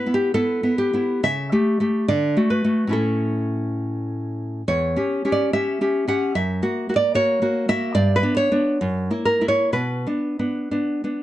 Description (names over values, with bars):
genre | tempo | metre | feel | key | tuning
romantic piece for solo classical guitar | 60-76 BPM | 2/4 | rubato | unclear | A4 = 441 Hz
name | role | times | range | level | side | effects
nylon-string guitar | solo | 0.0-11.2 s | E2 to F#5 | -19 LUFS | equal | none
room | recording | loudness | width
light reverb | dark, warm production, nothing above 11.0 kHz | -19 LUFS | side -14 dB against mid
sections
0.0-11.2 A section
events
none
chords
0.0 E5; 1.2 A7/C#; 2.1 D; 2.9 A; 4.7 C#dim/E; 6.3 F#; 7.9 G; 8.8 F#7; 9.7 Bm